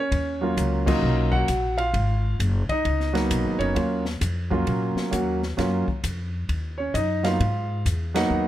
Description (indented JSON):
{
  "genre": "jazz piano trio",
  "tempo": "132 BPM",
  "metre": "4/4",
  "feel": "swing 65% on 8ths",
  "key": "Eb minor",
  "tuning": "A4 = 440 Hz",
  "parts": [
    { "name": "warm grand piano", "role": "melody", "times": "0.0-8.5 s", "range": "Gb3 to Gb5", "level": "-24 LUFS", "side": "right 1 dB", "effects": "none" },
    { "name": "upright bass", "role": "bass", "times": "0.1-8.5 s", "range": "Gb1 to Bb2", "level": "-25 LUFS", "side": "left 1 dB", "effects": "none" },
    { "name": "open jazz drum kit", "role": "drums", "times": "0.1-8.2 s", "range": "crash cymbal, hi-hat, kick drum, ride cymbal, snare drum", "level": "-32 LUFS", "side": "left 2 dB", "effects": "none" }
  ],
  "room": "little or no reverb",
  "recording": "none",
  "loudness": "-22 LUFS",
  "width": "side -13 dB against mid",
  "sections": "0.1-8.5 A section",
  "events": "band accent 0.8, 8.1",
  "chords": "0.1 Ebm9; 1.9 Abm7; 3.8 Ebm9; 7.4 Abm7"
}